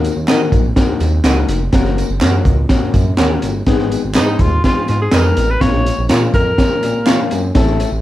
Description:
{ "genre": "uptempo 1960s-style soul", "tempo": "124 BPM", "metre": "4/4", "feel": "straight", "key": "unclear", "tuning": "A4 = 440 Hz", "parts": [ { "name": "warm grand piano", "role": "accompaniment", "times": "0.0-7.9 s", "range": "Ab3 to Ab5", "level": "-20 LUFS", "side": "left 6 dB", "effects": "none" }, { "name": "smooth gliding synth bass", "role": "bass", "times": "0.0-8.0 s", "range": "F1 to Eb3", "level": "-17 LUFS", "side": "equal", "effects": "none" }, { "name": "crunchy breakbeat drum kit", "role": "drums", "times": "0.0-7.9 s", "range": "hi-hat, kick drum, snare drum", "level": "-16 LUFS", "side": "equal", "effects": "none" }, { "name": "tambourine and handclaps", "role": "percussion", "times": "0.1-7.9 s", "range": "none", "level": "-27 LUFS", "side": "right 2 dB", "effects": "none" }, { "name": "semi-hollow electric guitar", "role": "stabs", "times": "0.3-7.2 s", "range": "Db4 to Eb5", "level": "-23 LUFS", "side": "right 6 dB", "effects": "harmonic tremolo" }, { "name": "breathy tenor saxophone", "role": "melody", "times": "4.2-7.3 s", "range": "Eb4 to Db5", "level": "-19 LUFS", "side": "equal", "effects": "slapback echo" } ], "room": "light reverb", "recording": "dark, warm production", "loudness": "-12 LUFS", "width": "side -14 dB against mid", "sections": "0.0-8.0 A section", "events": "grand piano fill 6.8-7.5", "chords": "0.0 Ebm; 1.7 Gb; 3.7 Abm; 5.6 Bbm" }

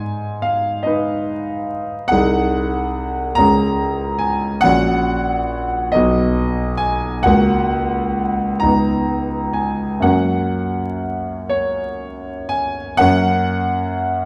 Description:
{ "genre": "classical, romantic nocturne for solo piano", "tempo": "40-50 BPM (dotted quarters)", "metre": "6/8", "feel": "rubato", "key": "F# major", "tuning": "A4 = 440 Hz", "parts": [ { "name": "clear concert grand piano", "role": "solo", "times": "0.0-14.3 s", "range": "A#1 to A#5", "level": "-18 LUFS", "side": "equal", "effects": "none" } ], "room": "wet recital hall reverb, RT60 1.4 s", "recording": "dark, warm production, vinyl crackle", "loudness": "-18 LUFS", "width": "mono", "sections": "0.0-13.0 A section; 13.0-14.3 B section", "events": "none", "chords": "0.0 G#m; 2.1 G#7/B#; 3.4 C#5; 4.7 F#/A#; 5.9 B; 7.3 F#/C#; 8.6 C#sus2; 10.1 F#" }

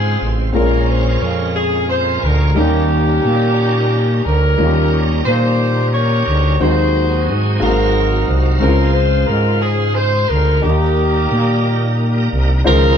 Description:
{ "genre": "gospel", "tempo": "60 BPM (dotted quarters)", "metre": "6/8", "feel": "straight", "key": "unclear", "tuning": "A4 = 438 Hz", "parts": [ { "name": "mellow saxophone section", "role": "melody", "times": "0.0-13.0 s", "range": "Bb3 to Db5", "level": "-18 LUFS", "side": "equal", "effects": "none" }, { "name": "warm baby grand piano", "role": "accompaniment", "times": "0.0-13.0 s", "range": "Ab2 to F5", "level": "-21 LUFS", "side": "left 3 dB", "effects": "none" }, { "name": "bright tonewheel organ", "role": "sustained chords", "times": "0.0-13.0 s", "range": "Db3 to F5", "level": "-24 LUFS", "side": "right 3 dB", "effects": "slow rotary speaker, chorus vibrato" }, { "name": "growling FM bass", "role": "bass", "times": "0.0-13.0 s", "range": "Ab1 to Bb2", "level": "-16 LUFS", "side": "equal", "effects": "none" } ], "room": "light reverb", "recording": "band playing live in one room", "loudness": "-13 LUFS", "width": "side -8 dB against mid", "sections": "0.0-12.7 A section", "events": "none", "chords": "0.0 Dbmaj7; 0.5 Bbm7; 2.6 Eb7; 6.6 Ab7/Eb; 7.6 Ab13; 8.6 Dbmaj7; 10.6 Eb" }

